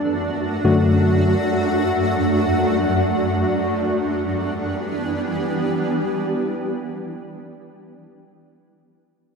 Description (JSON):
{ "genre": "pop", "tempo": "free time", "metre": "none", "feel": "none", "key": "E minor", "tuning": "A4 = 440 Hz", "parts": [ { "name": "shimmering ambient pad", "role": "sustained chords", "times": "0.0-6.9 s", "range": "F#2 to G4", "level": "-20 LUFS", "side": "equal", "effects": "chorus, built-in reverb" }, { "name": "tine electric piano", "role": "accompaniment", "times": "0.6-1.3 s", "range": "F#2 to F#4", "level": "-16 LUFS", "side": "left 2 dB", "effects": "none" } ], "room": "light reverb", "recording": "dry, gritty hardware recording", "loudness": "-18 LUFS", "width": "side -5 dB against mid", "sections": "0.0-3.8 A section; 3.8-6.2 B section", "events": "none", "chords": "0.0 D/F#; 3.8 Em7" }